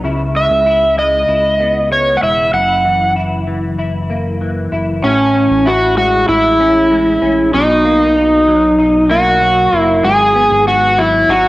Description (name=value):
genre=dream pop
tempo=96 BPM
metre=4/4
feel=straight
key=unclear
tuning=A4 = 437 Hz
part: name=semi-hollow electric guitar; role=arpeggios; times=0.0-11.5 s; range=F#2 to E4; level=-18 LUFS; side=left 2 dB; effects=ensemble chorus, cassette tape, analog delay
part: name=chorused synth bass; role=bass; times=0.0-11.5 s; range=E1 to C#2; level=-22 LUFS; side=equal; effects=none
part: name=overdriven slide guitar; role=melody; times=0.4-11.5 s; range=C#4 to F#5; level=-10 LUFS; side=equal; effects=analog delay
room=wet spring reverb, RT60 1.2 s, digital ambience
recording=home recording on cassette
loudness=-10 LUFS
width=side -18 dB against mid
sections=0.0-5.0 A section; 5.0-11.5 B section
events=none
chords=0.0 C#m7; 2.5 F#7; 5.0 Amaj7; 7.5 Bmaj7; 10.0 G#m7